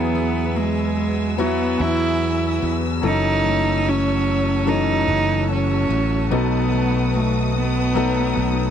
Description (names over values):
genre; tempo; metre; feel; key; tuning
pop ballad; 73 BPM; 4/4; straight; unclear; A4 = 444 Hz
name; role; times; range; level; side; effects
warm cello; melody; 0.0-8.7 s; G#3 to E4; -22 LUFS; right 4 dB; none
warm concert grand piano; accompaniment; 0.0-8.7 s; B2 to A4; -24 LUFS; left 4 dB; none
warm studio string section; sustained chords; 0.0-8.7 s; F#4 to E6; -29 LUFS; left 1 dB; none
picked steel-string acoustic guitar; arpeggios; 0.0-8.7 s; F#2 to F#4; -29 LUFS; left 15 dB; none
sustaining fretless electric bass; bass; 0.0-8.7 s; F#1 to E2; -23 LUFS; right 1 dB; lush chorus
room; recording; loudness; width
little or no reverb; dry, close 1970s-style studio recording; -18 LUFS; side -8 dB against mid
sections
0.0-8.7 A section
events
none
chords
0.0 Eadd9; 3.0 F#m7; 6.3 B7